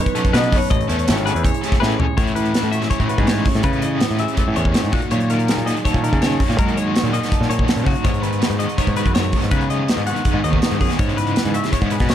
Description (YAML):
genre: math rock and midwest emo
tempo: 163 BPM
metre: 4/4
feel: straight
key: A lydian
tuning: A4 = 435 Hz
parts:
  - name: electric guitar through a small old amp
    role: melody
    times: 0.0-1.8 s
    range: B4 to D#5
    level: -25 LUFS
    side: left 3 dB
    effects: slapback echo
  - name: electric guitar through a small old amp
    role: accompaniment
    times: 0.0-12.1 s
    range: F#2 to A4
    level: -26 LUFS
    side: right 8 dB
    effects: spring reverb
  - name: twelve-string electric guitar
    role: arpeggios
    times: 0.0-12.1 s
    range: F#4 to F#5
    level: -26 LUFS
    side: left 10 dB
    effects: none
  - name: modern studio drum kit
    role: drums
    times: 0.1-12.1 s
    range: hi-hat, kick drum, snare drum, toms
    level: -20 LUFS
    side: equal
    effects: none
  - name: overdriven electric guitar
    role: riff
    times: 0.2-12.1 s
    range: G#2 to A4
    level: -24 LUFS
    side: left 1 dB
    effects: tremolo
  - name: overdriven picked electric bass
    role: bass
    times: 0.3-12.1 s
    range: G#1 to G#3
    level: -21 LUFS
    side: equal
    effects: none
room: little or no reverb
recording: dark, warm production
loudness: -16 LUFS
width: side -10 dB against mid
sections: 0.0-2.2 A section; 2.2-12.1 B section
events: drum fill 1.8-2.2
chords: 0.0 B7; 0.7 Amaj7; 2.2 Amaj9#11; 4.9 D#m7/A#; 8.1 G#m7; 11.0 C#m9/G#